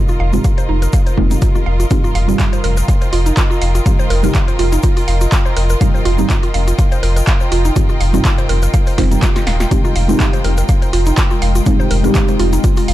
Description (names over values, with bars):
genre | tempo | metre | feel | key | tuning
deep house | 123 BPM | 4/4 | swing 55% on 16ths | F minor | A4 = 440 Hz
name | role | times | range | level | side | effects
mallet-like synth pluck | arpeggios | 0.0-12.9 s | Eb4 to F5 | -22 LUFS | right 3 dB | chorus, sidechain pumping, ping-pong delay
deep mellow chord stab | stabs | 0.0-12.9 s | G3 to C5 | -20 LUFS | right 1 dB | chorus, phaser, sidechain pumping, ping-pong delay
rich symphonic string section | texture | 0.0-12.9 s | F4 to G5 | -24 LUFS | equal | sidechain pumping
tube shaker | percussion | 0.1-12.9 s | none | -32 LUFS | left 7 dB | none
warm sub bass | bass | 0.2-12.9 s | Eb1 to F1 | -15 LUFS | equal | sidechain pumping
punchy analog drum machine | drums | 0.3-12.9 s | handclaps, hi-hat, snare drum | -23 LUFS | equal | none
electronic kick drum | drums | 0.4-12.7 s | none | -14 LUFS | equal | none
deep dark ambient pad | sustained chords | 11.1-12.9 s | Ab3 to G5 | -25 LUFS | left 5 dB | chorus, built-in reverb, sidechain pumping
room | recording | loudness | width
little or no reverb | dark, warm production | -12 LUFS | side -14 dB against mid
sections
0.0-12.9 A section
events
filter sweep on synth stab 0.0-12.9; drum fill 9.0-9.7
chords
0.0 Fm9; 1.9 Cm/F; 9.7 Fm9